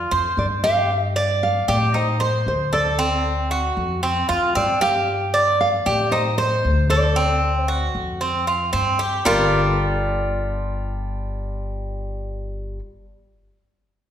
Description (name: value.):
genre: latin, Cuban son and guajira.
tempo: 115 BPM.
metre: 4/4.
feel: straight.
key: G minor.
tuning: A4 = 440 Hz.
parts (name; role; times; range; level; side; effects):
nylon-string guitar; melody; 0.0-12.8 s; Bb4 to F5; -24 LUFS; equal; none.
Cuban tres; arpeggios; 0.0-12.8 s; G3 to D5; -21 LUFS; right 1 dB; none.
upright bass; bass; 0.0-12.8 s; G1 to A2; -24 LUFS; left 1 dB; none.
room: wet recital hall reverb, RT60 1.6 s.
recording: recorded in a church or concert hall.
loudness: -18 LUFS.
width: side -9 dB against mid.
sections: 0.9-9.3 A section; 9.3-13.4 B section.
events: none.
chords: 0.0 F5; 0.9 G5; 1.9 Adim; 3.0 D7; 4.0 F5; 5.1 G5; 6.1 Adim; 7.2 D7; 8.2 F5; 9.3 Gm7.